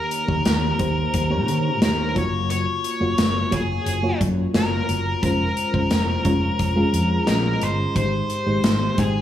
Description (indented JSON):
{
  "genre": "1980s-style pop",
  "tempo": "88 BPM",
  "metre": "4/4",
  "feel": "straight",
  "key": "unclear",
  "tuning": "A4 = 439 Hz",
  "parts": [
    { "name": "octave-fuzz lead guitar", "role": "melody", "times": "0.0-9.2 s", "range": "Ab4 to Db5", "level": "-25 LUFS", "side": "left 1 dB", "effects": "distortion" },
    { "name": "FM electric piano with tremolo", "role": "accompaniment", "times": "0.0-9.2 s", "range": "Ab2 to G5", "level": "-24 LUFS", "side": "left 1 dB", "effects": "none" },
    { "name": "big rock drum kit", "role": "drums", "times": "0.1-9.1 s", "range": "hi-hat, kick drum, snare drum", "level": "-24 LUFS", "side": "equal", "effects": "gated reverb" },
    { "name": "fretless electric bass", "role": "bass", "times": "0.3-9.2 s", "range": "F1 to Eb3", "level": "-24 LUFS", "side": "equal", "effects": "none" }
  ],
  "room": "light reverb",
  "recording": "small room reverb",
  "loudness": "-19 LUFS",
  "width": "side -11 dB against mid",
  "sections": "0.0-9.2 A section",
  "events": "none",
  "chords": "0.0 Eb7; 2.2 Gbmaj7; 5.2 Dbmaj7/F; 8.0 Abmaj7"
}